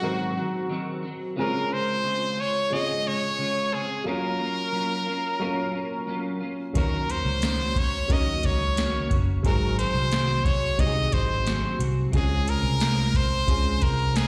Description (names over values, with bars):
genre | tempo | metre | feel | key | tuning
indie pop, bedroom pop | 89 BPM | 4/4 | straight | unclear | A4 = 441 Hz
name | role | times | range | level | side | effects
brilliant trumpet | melody | 0.0-14.3 s | Gb4 to Eb5 | -30 LUFS | equal | subtle chorus, slapback echo, plate reverb
clean electric guitar | accompaniment | 0.0-14.3 s | Ab2 to Gb4 | -34 LUFS | equal | analog chorus, warbly pitch drift, plate reverb, slapback echo
warm upright piano | accompaniment | 0.0-14.3 s | F3 to Bb4 | -36 LUFS | equal | cassette tape, plate reverb, slapback echo
vintage muted fingered electric bass | bass | 6.7-14.3 s | Gb1 to Eb2 | -29 LUFS | equal | none
soft vintage rhythm box | drums | 6.8-14.3 s | hi-hat, kick drum, snare drum | -29 LUFS | equal | overdrive
room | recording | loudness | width
light reverb | live gig heard through the venue's PA, recital hall reverb | -25 LUFS | mono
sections
0.0-14.3 A section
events
none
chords
0.0 Ab7; 1.4 Dbmaj7; 4.1 Gbmaj7; 6.8 Ebm7; 9.4 Ab7; 12.1 Dbmaj7